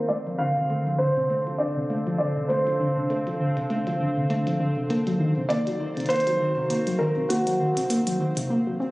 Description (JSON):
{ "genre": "IDM", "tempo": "100 BPM", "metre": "4/4", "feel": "swing 56% on 16ths", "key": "D phrygian", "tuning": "A4 = 439 Hz", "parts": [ { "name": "felt-muted upright piano", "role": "melody", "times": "0.0-7.9 s", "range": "Gb4 to F5", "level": "-26 LUFS", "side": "right 1 dB", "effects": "tape echo" }, { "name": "warbly tape-like pad", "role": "sustained chords", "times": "0.0-8.5 s", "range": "D3 to F5", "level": "-30 LUFS", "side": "equal", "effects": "chorus, built-in reverb" }, { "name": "warbly dusty pluck", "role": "arpeggios", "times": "0.0-8.9 s", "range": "C3 to C4", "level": "-26 LUFS", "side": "equal", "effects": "chorus, tape echo" }, { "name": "pulsing gated texture", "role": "texture", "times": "0.0-8.5 s", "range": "C4 to C5", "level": "-36 LUFS", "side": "equal", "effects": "chorus, built-in reverb" }, { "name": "electronic hi-hat", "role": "drums", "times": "0.1-8.5 s", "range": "none", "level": "-37 LUFS", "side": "equal", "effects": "none" } ], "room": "moderate echo chamber reverb, RT60 2.1 s", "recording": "recorded on a phone in the room, studio ambience, low-pass filter, nothing above 10.7 kHz", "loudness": "-22 LUFS", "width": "side -20 dB against mid", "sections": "0.0-8.9 A section", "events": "filter sweep on synth pluck 0.0-8.9; filter sweep 0.0-8.9", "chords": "0.1 Dm7; 4.9 Ebm6", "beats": "| 0.10 0.70 1.30 1.90 | 2.50 3.10 3.70 4.30 | 4.90 5.50 6.10 6.70 | 7.30 7.90 8.50" }